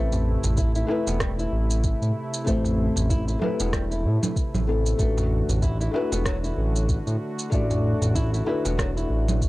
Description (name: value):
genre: organic downtempo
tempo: 95 BPM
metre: 4/4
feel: swing 58% on 16ths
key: A dorian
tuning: A4 = 440 Hz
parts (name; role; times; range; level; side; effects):
- felt-muted upright piano; accompaniment; 0.0-9.5 s; A3 to D5; -30 LUFS; left 4 dB; sidechain pumping, analog delay
- warm analog pad; sustained chords; 0.0-9.5 s; C3 to F#4; -33 LUFS; equal; chorus, sidechain pumping
- flamenco guitar; arpeggios; 0.0-9.5 s; F#3 to E4; -32 LUFS; equal; vintage 12-bit sampler grit, analog delay
- smooth synth bass; bass; 0.0-9.5 s; E1 to A2; -24 LUFS; equal; sidechain pumping
- electronic shaker, rim click and congas; drums; 0.1-9.5 s; none; -30 LUFS; right 2 dB; none
- darbuka; percussion; 0.1-9.4 s; none; -32 LUFS; left 1 dB; none
- electronic kick drum; drums; 0.6-9.5 s; none; -26 LUFS; equal; none
room: digital ambience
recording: dry, gritty hardware recording, cassette tape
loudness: -21 LUFS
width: side -19 dB against mid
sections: 0.0-9.5 A section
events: none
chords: 0.0 Amadd9; 5.0 Bm7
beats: 0.57 1.21 1.84 | 2.47 3.10 3.73 4.36 | 5.00 5.63 6.26 6.89 | 7.52 8.15 8.79 9.42